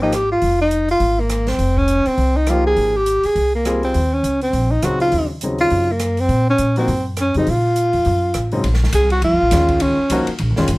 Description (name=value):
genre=modal jazz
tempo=204 BPM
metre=4/4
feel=swing 60% on 8ths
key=unclear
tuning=A4 = 438 Hz
part: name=breathy tenor saxophone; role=melody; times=0.0-10.3 s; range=Bb3 to Ab4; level=-17 LUFS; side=equal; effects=none
part: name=warm upright piano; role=accompaniment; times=0.0-0.1, 2.5-10.7 s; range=Ab2 to Ab4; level=-21 LUFS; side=left 1 dB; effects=none
part: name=upright bass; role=bass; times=0.0-10.8 s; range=F1 to Bb2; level=-20 LUFS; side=equal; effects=none
part: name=open jazz drum kit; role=drums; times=0.1-10.8 s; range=hi-hat, kick drum, ride cymbal, rim click, snare drum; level=-29 LUFS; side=right 2 dB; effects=none
room=light reverb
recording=none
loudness=-15 LUFS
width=side -21 dB against mid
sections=0.0-8.6 A section; 8.6-10.8 B section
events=none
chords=0.0 Fm11; 3.9 Ebm9; 8.6 Bbm9